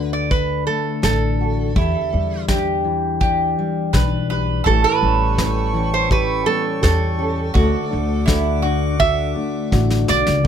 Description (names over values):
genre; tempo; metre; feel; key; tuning
acoustic folk duo or small band; 83 BPM; 4/4; straight; D major; A4 = 440 Hz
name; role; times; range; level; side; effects
lap resonator guitar; melody; 0.0-10.4 s; A4 to E5; -21 LUFS; right 6 dB; none
mandolin; second line; 0.0-10.5 s; E4 to D5; -24 LUFS; right 4 dB; none
fingerpicked steel-string acoustic guitar; accompaniment; 0.0-10.5 s; D2 to G4; -24 LUFS; left 6 dB; none
upright bass; bass; 0.0-10.4 s; A1 to E2; -21 LUFS; equal; none
soft brush drum kit; drums; 0.3-10.5 s; kick drum, snare drum; -20 LUFS; equal; none
warm woodwind section; sustained chords; 4.6-10.4 s; A4 to D6; -31 LUFS; left 1 dB; none
dark upright piano; arpeggios; 4.7-10.5 s; E3 to G4; -26 LUFS; right 1 dB; analog delay
room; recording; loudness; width
little or no reverb; close, detailed microphones; -16 LUFS; side -8 dB against mid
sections
0.0-10.4 A section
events
resonator guitar played with a steel bar solo 0.0-10.4; drum fill 9.7-10.4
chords
0.0 D; 1.8 Em7; 4.7 A7; 7.5 D